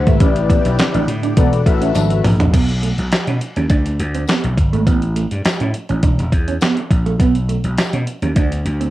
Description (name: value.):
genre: early-eighties boogie funk.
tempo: 103 BPM.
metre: 4/4.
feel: straight.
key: unclear.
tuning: A4 = 439 Hz.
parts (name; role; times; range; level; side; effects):
mellow synth brass; accompaniment; 0.0-2.3 s; E4 to E5; -20 LUFS; left 8 dB; chorus, cassette tape.
phased string machine; sustained chords; 0.0-2.5 s; C3 to G4; -29 LUFS; equal; ensemble chorus, phaser, cassette tape.
vintage slap bass; bass; 0.0-8.9 s; E1 to B2; -18 LUFS; equal; none.
mellow electric guitar; riff; 0.1-8.9 s; A3 to D4; -22 LUFS; right 6 dB; lush chorus, cassette tape.
crisp 8-bit digital drum machine; drums; 0.1-8.9 s; crash cymbal, hi-hat, kick drum, snare drum, toms; -16 LUFS; equal; overdrive, cassette tape.
tambourine; percussion; 0.8-7.9 s; none; -34 LUFS; left 9 dB; none.
room: light reverb.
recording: home recording on cassette.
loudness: -14 LUFS.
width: side -15 dB against mid.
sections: 0.0-2.5 A section; 2.5-8.9 B section.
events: drum fill 2.0-2.5.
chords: 0.2 A9sus4; 1.4 E9sus4; 2.5 Bsus2; 3.7 N.C.; 7.2 Bsus2; 8.4 D7(no3).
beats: | 0.20 0.79 1.37 1.95 | 2.54 3.12 3.70 4.28 | 4.87 5.45 6.03 6.61 | 7.20 7.78 8.36.